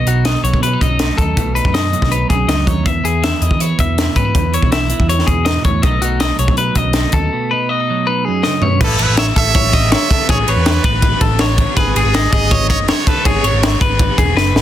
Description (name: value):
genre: math rock and midwest emo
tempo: 162 BPM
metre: 4/4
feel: straight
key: unclear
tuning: A4 = 440 Hz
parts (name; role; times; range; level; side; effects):
- twelve-string electric guitar; accompaniment; 0.0-8.8 s; E2 to A4; -21 LUFS; right 7 dB; none
- clean electric guitar; arpeggios; 0.0-14.6 s; F#4 to E5; -19 LUFS; left 5 dB; plate reverb
- picked electric bass; bass; 0.1-14.6 s; E1 to E3; -17 LUFS; equal; none
- crisp fusion drum kit; drums; 0.1-14.6 s; crash cymbal, hi-hat, kick drum, ride cymbal, snare drum, toms; -16 LUFS; equal; none
- brilliant trumpet; melody; 8.8-13.6 s; G#4 to E5; -19 LUFS; right 6 dB; slapback echo
room: light reverb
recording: dense, heavily limited modern master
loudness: -12 LUFS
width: side -12 dB against mid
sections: 0.0-8.8 A section; 8.8-14.6 B section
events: drum fill 8.4-8.8, 14.4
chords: 0.0 B7; 2.9 E6; 5.8 B7; 8.8 Aadd9; 11.8 C#7sus2/G#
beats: 0.26 0.63 1.00 | 1.38 1.75 2.12 2.49 | 2.87 3.24 3.61 3.98 | 4.36 4.73 5.10 5.47 | 5.84 6.21 6.59 6.96 | 7.33 7.70 8.07 8.44 | 8.81 9.19 9.56 9.93 | 10.30 10.67 11.04 11.41 | 11.78 12.15 12.52 12.89 | 13.26 13.63 14.00 14.37